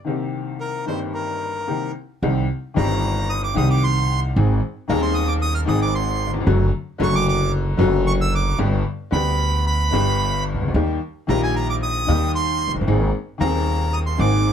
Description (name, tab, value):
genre	tango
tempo	113 BPM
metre	4/4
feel	rubato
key	C minor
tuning	A4 = 441 Hz
part	bright upright piano	accompaniment	0.0-14.5 s	Eb1 to Ab4	-22 LUFS	left 4 dB	none
part	bandoneon	melody	0.6-14.5 s	Bb4 to F6	-24 LUFS	right 4 dB	none
part	upright bass	bass	2.2-14.5 s	F1 to Eb2	-21 LUFS	right 1 dB	none
room	light reverb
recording	close, detailed microphones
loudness	-18 LUFS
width	side -8 dB against mid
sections	0.0-2.2 A section; 2.2-14.5 B section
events	break 0.1-2.2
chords	0.1 Cm7; 2.2 Cm; 4.4 Ab; 6.5 D/F#; 8.6 G; 10.7 Eb; 12.9 Abadd9